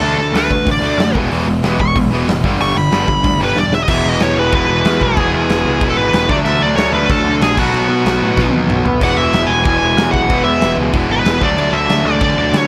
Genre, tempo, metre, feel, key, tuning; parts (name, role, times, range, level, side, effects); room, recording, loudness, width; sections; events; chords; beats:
punk rock; 187 BPM; 4/4; straight; A4 = 439 Hz
smooth overdriven lead guitar; melody; 0.0-12.7 s; F#4 to C#6; -19 LUFS; equal
distorted electric guitar; riff; 0.0-12.7 s; E2 to D4; -21 LUFS; equal; overdrive
distorted electric guitar; riff; 0.0-12.7 s; G2 to E4; -23 LUFS; equal; distortion
fuzz guitar; riff; 0.0-3.7, 9.0-12.7 s; G2 to G#4; -26 LUFS; equal
growling picked electric bass; bass; 0.0-12.7 s; E1 to D3; -23 LUFS; equal; overdrive
big rock drum kit; drums; 0.3-12.6 s; crash cymbal, hi-hat, kick drum, snare drum, splash cymbal, toms; -21 LUFS; equal
light reverb; -14 LUFS; mono
0.0-3.9 A section; 3.9-12.7 B section
lead electric guitar solo 0.0-3.9; drum fill 3.6-3.9, 8.4-9.0
0.0 D; 1.2 E; 2.4 G; 3.9 E; 6.3 D; 7.6 B; 9.0 E; 11.4 D
| 0.03 0.35 0.67 0.99 | 1.31 1.64 1.96 2.28 | 2.60 2.92 3.25 3.57 | 3.89 4.21 4.53 4.86 | 5.18 5.50 5.82 6.14 | 6.46 6.78 7.10 7.42 | 7.74 8.06 8.38 8.70 | 9.02 9.34 9.66 9.98 | 10.30 10.62 10.94 11.26 | 11.58 11.90 12.22 12.54